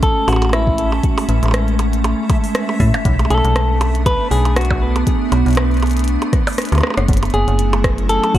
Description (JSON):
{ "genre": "IDM", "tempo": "119 BPM", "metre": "4/4", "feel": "swing 56% on 16ths", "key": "unclear", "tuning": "A4 = 440 Hz", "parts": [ { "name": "semi-hollow electric guitar", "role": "melody", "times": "0.0-8.4 s", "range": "E4 to B4", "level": "-21 LUFS", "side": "left 1 dB", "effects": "tape echo" }, { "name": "icy glass pad", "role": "sustained chords", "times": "0.0-8.4 s", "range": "F#3 to E4", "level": "-21 LUFS", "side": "right 2 dB", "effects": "chorus, built-in reverb, sidechain pumping" }, { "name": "metallic FM bass", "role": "bass", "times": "0.0-8.4 s", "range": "F#1 to A2", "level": "-16 LUFS", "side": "equal", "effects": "none" }, { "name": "electronic kick drum", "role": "drums", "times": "0.0-8.4 s", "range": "none", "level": "-17 LUFS", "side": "equal", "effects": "small room ambience" }, { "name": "glitchy drum kit", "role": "drums", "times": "0.0-8.4 s", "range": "hi-hat, percussion blips, rim click", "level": "-22 LUFS", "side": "right 1 dB", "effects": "small room ambience, tape echo" }, { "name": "backwards swelling texture", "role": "texture", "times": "0.0-7.1 s", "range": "E5", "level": "-32 LUFS", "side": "left 1 dB", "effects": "built-in reverb" } ], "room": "light reverb, digital ambience", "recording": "echo-heavy mix", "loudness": "-14 LUFS", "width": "side -13 dB against mid", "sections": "0.0-7.1 A section; 7.1-8.4 A section", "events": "drum fill 6.3-7.1; kick drops out 6.6-7.1", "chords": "0.0 Amaj7; 3.1 Bm7; 7.1 F#m7" }